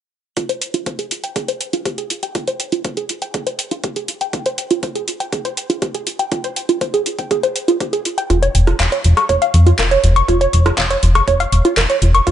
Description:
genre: progressive house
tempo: 121 BPM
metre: 4/4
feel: straight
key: F minor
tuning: A4 = 439 Hz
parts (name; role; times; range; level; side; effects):
- tight sequenced synth; arpeggios; 0.4-12.3 s; F4 to Db6; -18 LUFS; right 1 dB; chorus, sidechain pumping, tape echo
- electronic kick drum; drums; 0.4-12.3 s; none; -28 LUFS; equal; high-pass filter on kick, high-pass filter on room
- pop drum kit; drums; 0.4-12.3 s; handclaps, hi-hat, rim click; -22 LUFS; equal; overdrive
- plucky analog bass; bass; 8.3-12.3 s; F1 to F2; -13 LUFS; equal; sidechain pumping
room: light reverb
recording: nothing above 10.4 kHz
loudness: -15 LUFS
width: side -10 dB against mid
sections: 0.4-12.3 A section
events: filter sweep on synth arpeggio sound 0.4-12.3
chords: 0.4 Fmadd9; 8.3 Bbm/F (rootless)

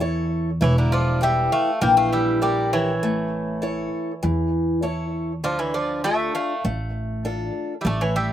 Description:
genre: greek folk, Greek bouzouki band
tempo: 99 BPM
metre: 4/4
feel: straight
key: D harmonic minor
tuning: A4 = 441 Hz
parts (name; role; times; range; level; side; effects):
- picked old ladder-braced acoustic guitar; accompaniment; 0.0-8.3 s; D3 to C#5; -25 LUFS; equal; slapback echo
- upright bass; bass; 0.0-8.3 s; E1 to E2; -24 LUFS; equal; none
- Greek bouzouki; melody; 0.6-8.3 s; Bb4 to G5; -26 LUFS; left 3 dB; slapback echo
- Greek bouzouki; second line; 0.6-8.3 s; D3 to Bb3; -25 LUFS; right 2 dB; slapback echo
room: little or no reverb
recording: recorded outdoors, with no room sound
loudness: -20 LUFS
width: side -11 dB against mid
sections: 0.0-8.3 A section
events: none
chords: 0.0 A; 0.6 Edim; 3.0 A; 5.4 Dm

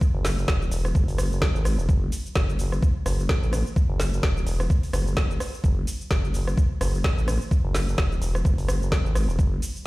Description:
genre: bass house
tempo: 128 BPM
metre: 4/4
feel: swing 57% on 16ths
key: unclear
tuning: A4 = 442 Hz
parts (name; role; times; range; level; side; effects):
- electronic kick drum; drums; 0.0-9.5 s; none; -22 LUFS; equal; overdrive, small room ambience
- garage drum kit; drums; 0.0-9.8 s; hi-hat, rim click, shaker, snare drum; -30 LUFS; equal; overdrive, small room ambience
- vowel-sweep wobble bass; bass; 0.1-9.6 s; E1 to A1; -25 LUFS; equal; chorus, sidechain pumping
room: little or no reverb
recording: played on a big sound system in a bare room, stone room reverb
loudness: -21 LUFS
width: side -20 dB against mid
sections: 0.0-9.9 A section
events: none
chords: none

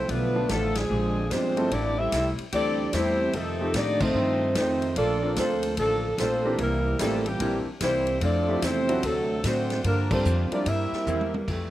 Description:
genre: jazz, big band swing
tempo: 148 BPM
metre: 4/4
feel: swing 64% on 8ths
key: F major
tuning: A4 = 440 Hz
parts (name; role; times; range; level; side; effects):
- mellow saxophone section; melody; 0.0-11.7 s; C3 to E5; -27 LUFS; left 2 dB; none
- clear trombone section; second line; 0.0-11.3 s; Bb2 to A4; -29 LUFS; right 4 dB; none
- upright bass; bass; 0.0-11.7 s; G1 to A2; -30 LUFS; equal; none
- vintage hollow-body jazz guitar; accompaniment; 0.1-11.7 s; F2 to G4; -35 LUFS; left 4 dB; none
- swinging big-band drum kit; drums; 0.1-11.6 s; crash cymbal, hi-hat, kick drum, ride cymbal, snare drum, toms; -34 LUFS; equal; none
- clear concert grand piano; accompaniment; 0.3-10.7 s; E3 to Bb4; -31 LUFS; left 1 dB; slapback echo
room: little or no reverb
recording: recorded outdoors, with no room sound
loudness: -23 LUFS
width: side -14 dB against mid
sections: 0.0-11.5 A section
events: band accent 0.7, 3.9, 10.0; drum fill 11.1-11.5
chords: 0.1 Bm7b5; 0.9 Bb13; 1.7 Am7; 3.3 F7; 5.0 Bbmaj7; 8.2 Fmaj7; 9.0 D7; 9.8 Gm7; 10.7 C7

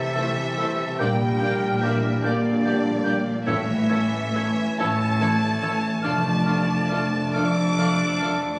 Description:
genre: classical, slow romantic movement for symphony orchestra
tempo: 44-49 BPM (dotted quarters)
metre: 6/8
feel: rubato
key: D minor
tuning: A4 = 440 Hz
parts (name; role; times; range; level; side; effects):
- warm chamber violin section; melody; 0.0-8.6 s; D5 to D6; -32 LUFS; equal; none
- warm oboe; second line; 0.0-8.6 s; A4 to E5; -36 LUFS; equal; none
- clear trombone section; sustained chords; 0.0-8.6 s; E3 to D4; -35 LUFS; equal; none
- dark French horn section; sustained chords; 0.0-8.6 s; D3 to D4; -31 LUFS; equal; none
- concert harp; arpeggios; 0.0-8.6 s; F2 to A4; -34 LUFS; equal; none
- rich chamber cello section; bass; 0.0-8.5 s; F2 to C3; -29 LUFS; equal; none
- rich chamber double bass section; bass; 0.0-8.5 s; F1 to C2; -31 LUFS; equal; none
- concert flute; second line; 0.1-8.3 s; E6 to G6; -35 LUFS; equal; none
- warm bassoon; accompaniment; 0.1-8.4 s; A3 to Bb3; -38 LUFS; equal; none
- rich chamber violin section; second line; 0.2-8.3 s; E4 to D5; -41 LUFS; equal; none
- warm clarinet; second line; 0.2-8.4 s; C#5 to E5; -37 LUFS; equal; none
- warm symphonic viola section; accompaniment; 0.2-8.3 s; D3 to E4; -38 LUFS; equal; none
- timpani; percussion; 3.5-4.8 s; A2; -38 LUFS; equal; none
room: moderate scoring stage reverb, RT60 2.1 s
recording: recorded on a phone in the room, studio reverb, compression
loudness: -23 LUFS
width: mono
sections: 0.0-8.6 A section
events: none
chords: 0.0 Am/C; 1.0 Gm/Bb; 3.5 A; 6.0 Dm/F

